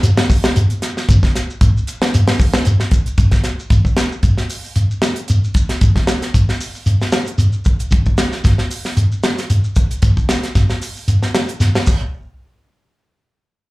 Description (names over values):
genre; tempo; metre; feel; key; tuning
afrobeat; 114 BPM; 4/4; swing 55% on 16ths; none; none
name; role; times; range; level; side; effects
tight funk drum kit; drums; 0.0-12.0 s; crash cymbal, hi-hat, kick drum, snare drum; -15 LUFS; equal; slapback echo
shekere; percussion; 0.0-12.0 s; none; -17 LUFS; equal; slapback echo
room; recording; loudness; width
moderate club reverb, RT60 0.6 s; live gig heard through the venue's PA, club reverb; -13 LUFS; side -20 dB against mid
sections
0.0-3.7 A section; 3.7-12.1 B section; 12.1-13.7 C section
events
none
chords
none